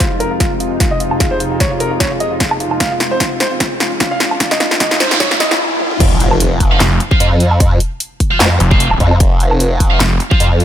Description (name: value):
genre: heavy wobble dubstep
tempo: 150 BPM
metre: 4/4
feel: swing 55% on 16ths, half-time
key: F minor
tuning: A4 = 440 Hz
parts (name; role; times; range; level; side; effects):
- clear baby grand piano; melody; 0.0-5.6 s; F4 to F5; -19 LUFS; equal; low-pass filter, tape echo
- supersaw pad; sustained chords; 0.0-5.6 s; F2 to Eb4; -22 LUFS; equal; phaser, sidechain pumping, low-pass filter
- big-room dance drum kit; drums; 0.0-10.6 s; crash cymbal, handclaps, hi-hat, snare drum, toms, woodblock; -16 LUFS; equal; high-pass filter on hats, high-pass filter on snare, high-pass filter on perc, high-pass filter on toms, high-pass filter on cymbals
- electronic kick drum; drums; 0.0-10.4 s; none; -15 LUFS; equal; none
- riser, noise sweep and impact; sound effects; 0.0-7.6 s; none; -21 LUFS; equal; none
- formant-sweep wobble bass; bass; 6.0-10.6 s; F1 to F2; -13 LUFS; equal; chorus, overdrive
- scooped high-gain guitar; stabs; 6.7-10.5 s; F4 to F5; -19 LUFS; right 2 dB; distortion, tape echo
- snarling distorted saw bass; bass; 6.8-10.2 s; F1; -13 LUFS; equal; overdrive
room: light reverb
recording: high-pass filter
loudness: -11 LUFS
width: side -10 dB against mid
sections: 0.0-6.0 A section; 6.0-10.6 B section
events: build-up 0.0-6.0; drum fill 0.0-5.6, 5.8; riser 0.0-6.0; filter sweep 0.0-6.0; noise sweep 4.4-6.0; stop 5.6-6.0; drop 6.0-10.6; impact 6.0-7.6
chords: 0.0 Fm7; 6.0 F5